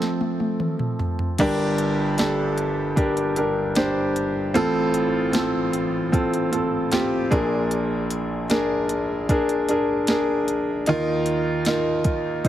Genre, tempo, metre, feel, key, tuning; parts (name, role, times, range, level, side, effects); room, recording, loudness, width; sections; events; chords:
pop ballad; 76 BPM; 4/4; straight; G minor; A4 = 440 Hz
clear grand piano; accompaniment; 0.0-12.5 s; G1 to C5; -21 LUFS; equal
smooth R&B drum kit; drums; 0.0-12.5 s; crash cymbal, hi-hat, kick drum, snare drum, toms; -25 LUFS; equal; overdrive
light reverb, digital ambience; heavily compressed radio sound; -20 LUFS; side -12 dB against mid
0.0-1.4 A section; 1.4-12.5 B section
drum fill 0.0-1.4; grand piano solo 0.0-1.4
0.0 F; 1.4 Gm; 4.6 F/A; 7.3 Bb7; 10.9 Ebsus2